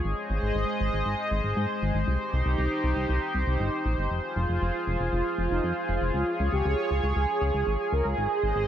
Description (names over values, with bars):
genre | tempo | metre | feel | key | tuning
synthwave | 118 BPM | 4/4 | straight | F minor | A4 = 438 Hz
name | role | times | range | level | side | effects
chorused pulse-width pad | sustained chords | 0.0-8.7 s | Ab3 to Eb5 | -29 LUFS | equal | none
chorused synth bass | bass | 0.0-8.7 s | F1 to Ab2 | -27 LUFS | equal | none
mellow synth brass | melody | 4.6-8.7 s | Eb4 to Bb4 | -28 LUFS | right 2 dB | chorus, digital delay
room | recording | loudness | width
light reverb | none | -25 LUFS | side -10 dB against mid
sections
0.0-8.7 A section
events
none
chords
0.0 Ab; 2.1 Cm; 4.1 Fm; 6.1 Db; 8.2 Ab